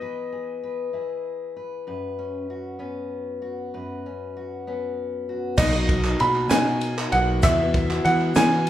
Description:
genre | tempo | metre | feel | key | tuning
indie folk with a building arrangement | 65 BPM (dotted quarters) | 6/8 | straight | B major | A4 = 439 Hz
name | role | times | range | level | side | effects
bright upright piano | melody | 0.0-1.5, 5.6-8.7 s | D#5 to B5 | -23 LUFS | right 1 dB | none
fingerpicked steel-string acoustic guitar | accompaniment | 0.0-5.6 s | F#2 to B4 | -30 LUFS | left 4 dB | none
picked acoustic archtop guitar | accompaniment | 5.6-8.7 s | B2 to A#4 | -26 LUFS | left 2 dB | none
fingered electric bass | bass | 5.6-8.7 s | B1 to E3 | -24 LUFS | equal | none
compact cocktail drum kit | drums | 5.6-8.7 s | crash cymbal, kick drum, ride cymbal, snare drum | -24 LUFS | right 1 dB | none
group handclap | percussion | 5.6-8.6 s | none | -33 LUFS | right 3 dB | none
tube shaker | percussion | 5.6-8.7 s | none | -39 LUFS | left 6 dB | none
room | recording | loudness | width
wet large studio reverb, RT60 0.9 s | band playing live in one room | -22 LUFS | side -12 dB against mid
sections
0.0-5.6 A section; 5.6-8.7 B section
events
none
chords
0.0 E; 1.9 F#sus4; 5.6 Bmaj7; 7.4 Eadd9

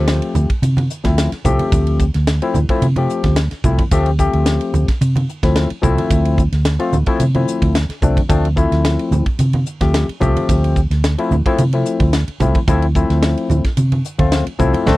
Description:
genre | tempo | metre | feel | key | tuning
electric jazz fusion | 110 BPM | 4/4 | swing 53% on 16ths | D minor | A4 = 445 Hz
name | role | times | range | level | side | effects
barky tine electric piano | accompaniment | 0.0-15.0 s | F3 to G4 | -19 LUFS | left 4 dB | lush chorus
vintage muted fingered electric bass | bass | 0.0-15.0 s | C2 to C3 | -16 LUFS | equal | none
tight funk drum kit | drums | 0.1-15.0 s | hi-hat, kick drum, ride cymbal, snare drum | -19 LUFS | equal | none
congas | percussion | 0.3-15.0 s | none | -23 LUFS | right 3 dB | none
room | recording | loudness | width
little or no reverb | dry, close 1970s-style studio recording | -14 LUFS | side -18 dB against mid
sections
0.0-15.0 A section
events
none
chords
0.0 Dm7

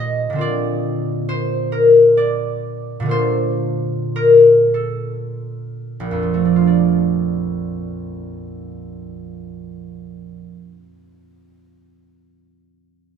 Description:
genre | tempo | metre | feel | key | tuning
classical, solo harp piece | 29-49 BPM (dotted quarters) | 6/8 | rubato | Bb major | A4 = 440 Hz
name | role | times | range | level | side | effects
concert harp | solo | 0.0-11.1 s | Bb1 to F5 | -16 LUFS | left 1 dB | none
room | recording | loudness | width
wet stone room reverb, RT60 1.3 s | none | -14 LUFS | side -7 dB against mid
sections
0.0-6.7 A section; 6.7-10.5 B section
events
slowing down 0.0-6.7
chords
0.4 Bbadd9; 6.7 Bbmaj7

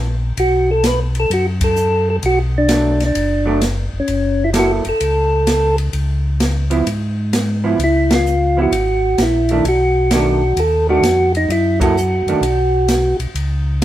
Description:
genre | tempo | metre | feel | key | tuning
soul jazz organ trio | 130 BPM | 4/4 | swing 67% on 8ths | unclear | A4 = 443 Hz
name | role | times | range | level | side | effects
mellow tonewheel organ | bass | 0.0-13.8 s | F#1 to G#2 | -18 LUFS | equal | slow rotary speaker
percussive tonewheel organ | melody | 0.4-13.2 s | C#4 to B4 | -16 LUFS | equal | slow rotary speaker
open jazz drum kit | drums | 0.4-13.8 s | hi-hat, kick drum, ride cymbal, snare drum | -23 LUFS | equal | none
vintage hollow-body jazz guitar | accompaniment | 2.7-12.4 s | D#3 to A4 | -20 LUFS | right 4 dB | none
room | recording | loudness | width
light reverb | band playing live in one room | -14 LUFS | side -13 dB against mid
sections
0.0-13.8 A section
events
band accent 1.5, 8.0, 11.7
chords
0.4 B5; 2.2 Bm7; 4.1 F#7#9; 5.9 C#(#9); 9.6 B7#9; 11.5 F#7#9; 12.4 B5

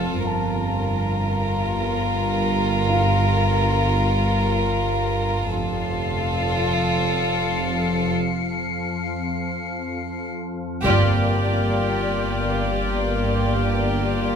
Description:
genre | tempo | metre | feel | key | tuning
cinematic, suspense film score | free time | none | none | G minor | A4 = 440 Hz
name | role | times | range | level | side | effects
warm chamber violin section | second line | 0.0-14.4 s | F4 to D5 | -23 LUFS | left 1 dB | none
warm chamber cello section | bass | 0.0-14.4 s | F2 to G2 | -26 LUFS | right 1 dB | none
warm chamber double bass section | bass | 0.0-14.4 s | F1 to G1 | -27 LUFS | right 2 dB | none
organ-like drone | drone | 0.0-14.4 s | G1 to F2 | -28 LUFS | left 1 dB | ensemble chorus, built-in reverb
dark baby grand piano | texture | 0.3-5.6, 11.3-14.4 s | F4 to A5 | -33 LUFS | left 2 dB | none
warm chamber violin section | texture | 5.5-10.4 s | C7 to C#7 | -30 LUFS | left 6 dB | none
warm studio viola section | accompaniment | 10.8-14.4 s | Bb3 to F4 | -24 LUFS | equal | none
taiko ensemble | drums | 10.8-12.6 s | none | -34 LUFS | left 1 dB | none
room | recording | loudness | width
moderate scoring stage reverb, RT60 2.2 s | close, detailed microphones | -20 LUFS | side -7 dB against mid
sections
0.0-10.8 A section; 10.8-14.4 A section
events
break 8.2-10.8; band accent 10.8-11.7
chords
0.2 Gm7; 5.5 F; 10.8 Gm7

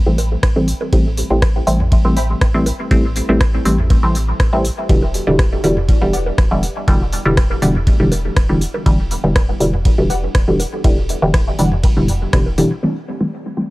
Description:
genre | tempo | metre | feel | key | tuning
dub techno | 121 BPM | 4/4 | straight | A minor | A4 = 440 Hz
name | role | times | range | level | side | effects
filtered dub chord stab | stabs | 0.1-13.7 s | B2 to C4 | -17 LUFS | equal | chorus, phaser, cassette tape, sidechain pumping, dub echo
pure sine sub bass | bass | 0.1-12.6 s | E1 to A1 | -21 LUFS | equal | sidechain pumping
deep house drum kit | drums | 0.2-12.7 s | hi-hat, ride cymbal, rim click | -25 LUFS | equal | dub echo
electronic bongos and toms | percussion | 0.2-12.6 s | none | -26 LUFS | right 2 dB | sidechain pumping on perc, sidechain pumping on toms, dub echo
electronic kick drum | drums | 0.4-12.4 s | none | -15 LUFS | equal | none
filtered dub chord stab | riff | 2.2-2.3, 6.1-11.7 s | G4 to B5 | -30 LUFS | left 1 dB | phaser, ensemble chorus, sidechain pumping, dub echo
room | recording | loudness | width
little or no reverb | dry, gritty hardware recording | -13 LUFS | side -20 dB against mid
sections
0.0-12.8 A section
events
none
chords
0.0 Am7; 4.9 Em7; 12.8 Am7

